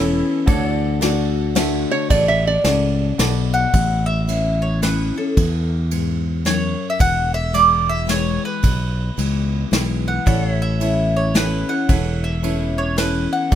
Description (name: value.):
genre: honky-tonk and classic country.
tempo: 110 BPM.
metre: 3/4.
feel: swing 62% on 8ths.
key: A major.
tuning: A4 = 439 Hz.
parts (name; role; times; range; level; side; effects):
lap resonator guitar; second line; 0.0-3.5 s; A4 to E5; -20 LUFS; right 2 dB; none.
bright upright piano; accompaniment; 0.0-3.6, 10.3-13.6 s; E4 to E5; -29 LUFS; right 7 dB; none.
picked steel-string acoustic guitar; accompaniment; 0.0-13.6 s; E2 to F#4; -24 LUFS; left 6 dB; none.
pedal steel guitar; sustained chords; 0.0-3.7, 10.3-13.5 s; A4 to F#5; -31 LUFS; equal; none.
fingered electric bass; bass; 0.0-13.6 s; E1 to E2; -21 LUFS; equal; none.
soft brush drum kit; drums; 0.5-13.6 s; kick drum, ride cymbal, snare drum; -22 LUFS; equal; none.
mandolin; melody; 3.5-13.6 s; A4 to F#5; -21 LUFS; right 2 dB; none.
room: little or no reverb.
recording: close, detailed microphones.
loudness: -16 LUFS.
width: side -10 dB against mid.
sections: 0.0-3.7 A section; 3.7-13.6 B section.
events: resonator guitar played with a steel bar solo 0.0-3.7.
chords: 0.5 D; 3.7 Aadd9; 7.0 E; 10.3 Aadd9.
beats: | 0.48 1.02 1.56 | 2.11 2.65 3.19 | 3.74 4.28 4.83 | 5.37 5.91 6.46 | 7.00 7.55 8.09 | 8.63 9.18 9.72 | 10.26 10.81 11.35 | 11.89 12.44 12.98 | 13.52.